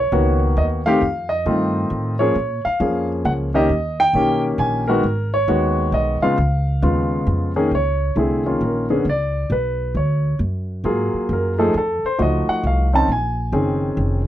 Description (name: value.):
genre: jazz piano trio.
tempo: 134 BPM.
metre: 3/4.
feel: swing 66% on 8ths.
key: Db major from 7.7 s.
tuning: A4 = 441 Hz.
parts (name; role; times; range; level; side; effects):
warm grand piano; melody; 0.0-14.3 s; C#3 to A5; -18 LUFS; equal; none.
upright bass; bass; 0.0-14.3 s; F1 to A#2; -21 LUFS; equal; none.
room: little or no reverb.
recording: dry, close 1970s-style studio recording.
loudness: -17 LUFS.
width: side -12 dB against mid.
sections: 0.0-7.7 A section; 7.7-14.3 B section.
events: grand piano solo 7.7-14.3.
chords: 0.0 Bmaj7; 1.0 F7; 2.4 A#m7; 3.7 D#7; 5.0 G#m7; 6.4 C#7; 7.7 Db69; 9.1 Cbmadd9; 10.4 Gbmaj9; 11.7 F7b9; 13.1 Bbm11.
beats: 0.11 0.56 | 1.01 1.46 1.90 | 2.35 2.80 3.24 | 3.69 4.14 4.58 | 5.03 5.48 5.92 | 6.37 6.82 7.26 | 7.71 8.16 8.61 | 9.05 9.50 9.95 | 10.39 10.84 11.29 | 11.74 12.18 12.63 | 13.08 13.52 13.97.